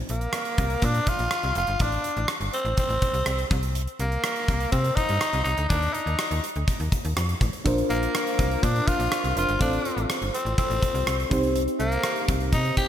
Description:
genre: 1980s-style pop.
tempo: 123 BPM.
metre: 4/4.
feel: straight.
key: Bb major.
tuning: A4 = 440 Hz.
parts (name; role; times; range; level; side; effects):
slap-like FM bass; bass; 0.0-12.7 s; F1 to C3; -27 LUFS; equal; none.
raspy tenor saxophone; melody; 0.1-12.9 s; Bb3 to G4; -27 LUFS; equal; ping-pong delay.
gated 80s drum kit; drums; 0.1-12.9 s; hi-hat, kick drum, rim click; -27 LUFS; equal; gated reverb.
mellow FM electric piano; accompaniment; 7.6-12.9 s; C4 to C5; -28 LUFS; equal; chorus.
room: moderate lush hall reverb, RT60 2.2 s.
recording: bright 1980s-style digital production.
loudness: -22 LUFS.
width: side -10 dB against mid.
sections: 0.0-12.9 A section.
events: none.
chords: 0.0 Bbsus2; 1.8 Gsus4 (rootless); 3.5 Cm; 5.7 F7(no3); 7.7 Bbadd9; 9.6 F; 11.3 Cm.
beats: 0.34 0.82 1.31 | 1.80 2.29 2.78 3.26 | 3.75 4.24 4.73 5.21 | 5.70 6.19 6.68 7.17 | 7.65 8.14 8.63 9.12 | 9.61 10.09 10.58 11.07 | 11.56 12.04 12.53.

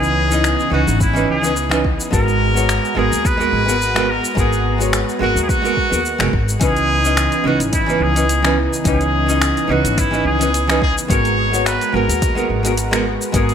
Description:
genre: sunset chillout.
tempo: 107 BPM.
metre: 4/4.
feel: swing 54% on 16ths.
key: G# minor.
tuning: A4 = 440 Hz.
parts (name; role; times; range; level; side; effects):
trumpet with straight mute; melody; 0.0-13.5 s; E4 to C#5; -20 LUFS; equal; digital delay, shimmer reverb.
archtop guitar, miked and amplified; accompaniment; 0.0-13.5 s; E3 to D#5; -20 LUFS; right 2 dB; auto-pan, digital delay, shimmer reverb.
lush unison pad; sustained chords; 0.0-13.5 s; C#3 to A#5; -24 LUFS; equal; chorus, shimmer reverb.
upright bass; bass; 0.0-13.5 s; F#1 to D#2; -21 LUFS; equal; tube saturation.
deep house drum kit; drums; 0.0-13.5 s; cabasa, finger snaps, hi-hat; -23 LUFS; left 2 dB; gated reverb.
electronic kick drum; drums; 1.0-13.5 s; none; -20 LUFS; equal; none.
room: moderate plate reverb, RT60 1.2 s.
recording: bright 1980s-style digital production.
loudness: -14 LUFS.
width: side -8 dB against mid.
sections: 0.0-13.5 A section.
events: none.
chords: 0.0 C#m9; 2.1 G#m9; 6.6 C#m9; 11.1 G#m9.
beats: 0.44 1.00 1.57 | 2.13 2.69 3.25 3.81 | 4.37 4.93 5.49 6.05 | 6.61 7.17 7.73 8.29 | 8.86 9.42 9.98 10.54 | 11.10 11.66 12.22 12.78 | 13.34.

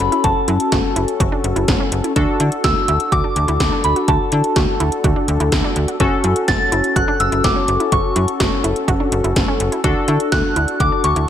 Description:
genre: synth-pop.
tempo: 125 BPM.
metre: 4/4.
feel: straight.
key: F# minor.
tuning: A4 = 439 Hz.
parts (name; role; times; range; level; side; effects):
soft synth bell; melody; 0.0-11.3 s; A5 to A6; -20 LUFS; equal; chorus, ping-pong delay.
funky polysynth comp; accompaniment; 0.0-11.3 s; C#4 to A4; -20 LUFS; left 2 dB; chorus.
wide unison pluck; arpeggios; 0.0-11.3 s; C#4 to F#4; -26 LUFS; right 3 dB; ping-pong delay.
slap-like FM bass; bass; 0.0-11.3 s; F#1 to D3; -19 LUFS; equal; none.
80s electronic pad drums; drums; 0.0-11.3 s; hi-hat, kick drum, snare drum; -20 LUFS; equal; none.
room: light reverb, digital ambience.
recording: none.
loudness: -14 LUFS.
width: side -10 dB against mid.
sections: 0.0-11.3 A section.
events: none.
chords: 0.0 F#m; 2.2 D; 6.0 F#m; 9.8 D.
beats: | 0.24 0.72 1.20 1.68 | 2.16 2.64 3.12 3.60 | 4.08 4.56 5.04 5.52 | 6.00 6.48 6.96 7.44 | 7.92 8.40 8.88 9.36 | 9.84 10.32 10.80 11.28.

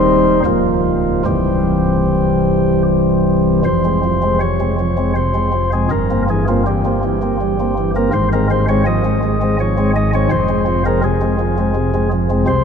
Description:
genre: classical, chorale-style piece for pipe organ.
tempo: 74-84 BPM.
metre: 3/4.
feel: rubato.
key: F minor.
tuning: A4 = 441 Hz.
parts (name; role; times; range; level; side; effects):
chamber organ, flutes; solo; 0.0-12.6 s; C1 to Eb5; -13 LUFS; equal; none.
room: wet cathedral reverb, RT60 6.1 s.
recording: dark, warm production.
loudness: -13 LUFS.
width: side -6 dB against mid.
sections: 0.0-3.7 A section; 3.7-12.6 B section.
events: none.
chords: 0.4 Bbm/Db; 1.2 C; 3.7 Fm; 5.9 C7/G; 8.1 Fm/Ab; 10.3 Fm.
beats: 0.44 | 1.25 2.06 2.86 | 3.65 4.41 5.16 | 5.91 6.65 7.39 | 8.12 8.85 9.58 | 10.30 11.03 11.76 | 12.48.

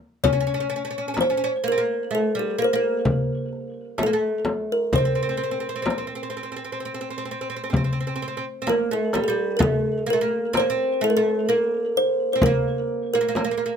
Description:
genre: Turkish makam ensemble.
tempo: 128 BPM (eighths).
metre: 10/8.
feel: straight.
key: C makam hicaz.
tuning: A4 = 442 Hz.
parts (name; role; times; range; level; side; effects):
kalimba; melody; 0.2-13.8 s; G4 to Db5; -22 LUFS; equal; tape echo.
oud; second line; 0.2-13.7 s; G3 to Db4; -28 LUFS; right 3 dB; none.
darbuka; percussion; 0.2-13.6 s; none; -26 LUFS; left 2 dB; none.
frame drum; percussion; 0.2-13.6 s; none; -25 LUFS; left 2 dB; none.
room: light reverb.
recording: none.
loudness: -21 LUFS.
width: side -7 dB against mid.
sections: 0.0-9.6 A section; 9.6-13.8 B section.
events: none.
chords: none.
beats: | 0.24 0.71 1.18 1.65 2.12 2.58 3.05 3.52 3.99 4.46 | 4.93 5.39 5.86 6.33 6.80 7.27 7.74 8.20 8.67 9.14 | 9.61 10.07 10.54 11.01 11.48 11.95 12.41 12.88 13.35.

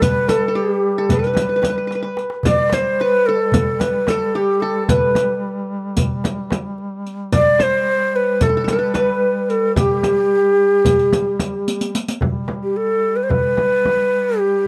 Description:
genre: Turkish makam ensemble.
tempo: 221 BPM (eighths).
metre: 9/8.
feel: straight.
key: G makam rast.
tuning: A4 = 445 Hz.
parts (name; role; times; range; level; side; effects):
breathy hollow ney; melody; 0.0-14.7 s; G4 to D5; -19 LUFS; equal; tape echo.
qanun; second line; 0.0-11.9 s; G4 to D5; -26 LUFS; equal; none.
warm duduk; drone; 0.0-14.7 s; G3; -29 LUFS; equal; none.
darbuka; percussion; 0.0-14.0 s; none; -26 LUFS; equal; none.
frame drum; percussion; 0.0-14.0 s; none; -25 LUFS; equal; none.
riq; percussion; 0.0-12.2 s; none; -28 LUFS; equal; none.
room: small room ambience.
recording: dry, close 1970s-style studio recording.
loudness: -18 LUFS.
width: mono.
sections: 0.0-12.2 A section; 12.2-14.7 B section.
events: drum fill 1.9-2.5, 11.7-12.2.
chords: none.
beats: | 0.02 0.29 0.56 0.83 1.10 1.37 1.64 1.91 2.18 | 2.45 2.72 2.99 3.27 3.54 3.81 4.08 4.35 4.62 | 4.89 5.16 5.43 5.70 5.97 6.24 6.51 6.78 7.05 | 7.33 7.60 7.87 8.14 8.41 8.68 8.95 9.22 9.49 | 9.77 10.04 10.31 10.58 10.85 11.12 11.39 11.67 11.94 | 12.21 12.48 12.75 13.03 13.30 13.57 13.84 14.11 14.38 | 14.65.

